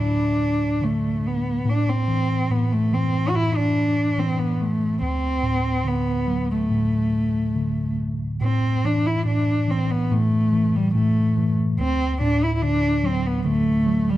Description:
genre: pop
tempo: 71 BPM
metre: 4/4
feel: straight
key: D mixolydian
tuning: A4 = 440 Hz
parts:
  - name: dark cello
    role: melody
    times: 0.0-14.2 s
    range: G3 to F#4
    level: -22 LUFS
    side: equal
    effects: ping-pong delay
  - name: mellow tine electric piano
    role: accompaniment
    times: 0.0-14.2 s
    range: D2 to F#3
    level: -22 LUFS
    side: equal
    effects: medium stereo tremolo
room: light reverb, studio reverb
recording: none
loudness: -19 LUFS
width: side -14 dB against mid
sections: 0.0-8.4 A section; 8.4-14.2 B section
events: none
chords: 0.0 D; 1.7 A5; 5.0 D; 8.4 A5; 11.8 D

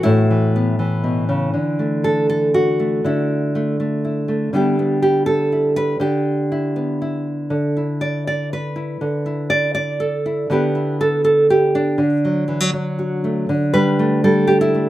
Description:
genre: folk, solo fingerstyle acoustic guitar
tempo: 121 BPM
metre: 3/4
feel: straight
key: D major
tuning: A4 = 440 Hz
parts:
  - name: nylon-string guitar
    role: solo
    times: 0.0-14.9 s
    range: A2 to D5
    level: -16 LUFS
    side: equal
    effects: none
room: light reverb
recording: recorded outdoors, with no room sound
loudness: -16 LUFS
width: side -14 dB against mid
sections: 0.0-1.5 A section; 1.5-13.5 B section; 13.5-14.9 A section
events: none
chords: 0.0 Asus2; 1.5 Dadd9; 4.5 G6/D; 7.5 Dsus2; 10.5 G6/D; 12.0 D; 13.5 Em/D

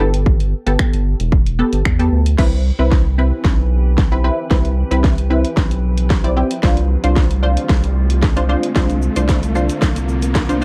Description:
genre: dance-pop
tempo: 113 BPM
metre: 4/4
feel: straight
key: C major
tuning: A4 = 440 Hz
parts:
  - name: punchy chord stab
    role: accompaniment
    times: 0.0-10.6 s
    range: B3 to D5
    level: -23 LUFS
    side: equal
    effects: chorus, phaser, sidechain pumping
  - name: round analog bass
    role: bass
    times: 0.0-10.6 s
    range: E1 to E2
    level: -19 LUFS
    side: equal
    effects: sidechain pumping
  - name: house drum kit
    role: drums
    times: 0.1-10.6 s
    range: crash cymbal, finger snaps, hi-hat, kick drum, shaker, snare drum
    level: -19 LUFS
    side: equal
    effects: none
  - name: glassy FM pad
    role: sustained chords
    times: 2.8-10.6 s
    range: D3 to B4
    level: -30 LUFS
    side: equal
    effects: ensemble chorus, built-in reverb, sidechain pumping
  - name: riser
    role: sound effects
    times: 4.5-10.6 s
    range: none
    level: -32 LUFS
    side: equal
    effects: none
room: little or no reverb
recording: dark, warm production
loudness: -16 LUFS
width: mono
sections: 0.0-2.4 A section; 2.4-10.6 B section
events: build-up 2.4-10.6; drum fill 2.4-10.6; filter sweep 2.4-10.6; riser 4.5-10.6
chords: 0.0 Gadd9; 2.4 Cmaj7; 6.6 Dm7/C

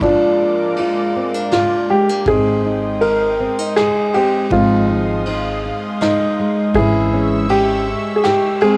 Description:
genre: acoustic folk-pop ballad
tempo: 80 BPM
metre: 3/4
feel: straight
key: Ab major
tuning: A4 = 440 Hz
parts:
  - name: warm grand piano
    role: melody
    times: 0.0-8.8 s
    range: F3 to Bb4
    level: -18 LUFS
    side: equal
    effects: cassette tape
  - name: nylon-string guitar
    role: accompaniment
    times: 0.0-8.8 s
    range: Ab2 to F4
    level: -24 LUFS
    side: equal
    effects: none
  - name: chorused pulse-width pad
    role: sustained chords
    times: 0.0-8.8 s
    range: Ab3 to Fb6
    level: -26 LUFS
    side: equal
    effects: none
  - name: soft brush drum kit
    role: drums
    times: 0.0-8.8 s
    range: kick drum, ride cymbal, snare drum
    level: -30 LUFS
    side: equal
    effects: cassette tape
  - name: upright bass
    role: bass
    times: 2.3-7.9 s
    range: Ab1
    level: -24 LUFS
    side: equal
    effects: none
room: moderate spring reverb, RT60 2.5 s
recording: home recording on cassette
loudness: -17 LUFS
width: mono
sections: 0.0-8.8 A section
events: none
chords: 0.0 Bb/Ab; 2.3 Abmaj7; 4.5 Fm7/Ab; 6.7 Dbm/Ab

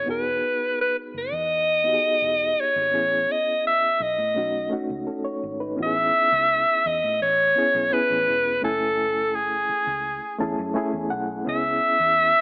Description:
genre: lush 1970s-style soul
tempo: 84 BPM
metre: 4/4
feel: straight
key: unclear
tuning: A4 = 440 Hz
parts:
  - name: bright alto saxophone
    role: melody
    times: 0.0-12.4 s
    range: G#4 to E5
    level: -20 LUFS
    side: equal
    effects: none
  - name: reed electric piano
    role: accompaniment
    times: 0.0-12.4 s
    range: A3 to A5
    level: -29 LUFS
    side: equal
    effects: fast tremolo
  - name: vintage muted fingered electric bass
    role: bass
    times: 0.0-12.3 s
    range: E1 to A2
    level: -39 LUFS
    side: equal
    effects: none
room: light reverb, studio ambience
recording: AM radio sound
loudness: -20 LUFS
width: side -33 dB against mid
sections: 0.0-5.8 A section; 5.8-12.4 B section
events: reed electric piano fill 10.0-11.5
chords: 0.1 Emaj9; 2.9 Amaj9; 4.4 B7; 5.8 Amaj9; 8.6 F#m9; 11.5 C#m7

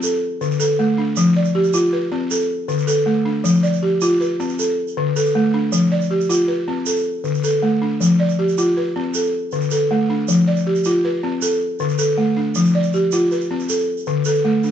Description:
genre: west african traditional, West African string and xylophone music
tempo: 105 BPM (dotted quarters)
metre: 12/8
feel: straight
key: F lydian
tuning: A4 = 438 Hz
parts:
  - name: balafon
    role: arpeggios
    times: 0.0-14.7 s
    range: D3 to D5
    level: -16 LUFS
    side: equal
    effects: none
  - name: tube shaker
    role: percussion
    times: 0.0-14.7 s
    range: none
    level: -28 LUFS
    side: right 5 dB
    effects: none
room: wet large studio reverb, RT60 0.9 s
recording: band playing live in one room, nothing above 8.0 kHz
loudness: -16 LUFS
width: side -9 dB against mid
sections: 0.0-5.7 A section; 5.7-14.7 B section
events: none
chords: 0.0 D5; 1.2 F5; 2.3 D5; 3.4 F5; 4.6 D5; 5.7 F5; 6.9 D5; 8.0 F5; 9.1 D5; 10.3 F5; 11.4 D5; 12.6 F5; 13.7 D5

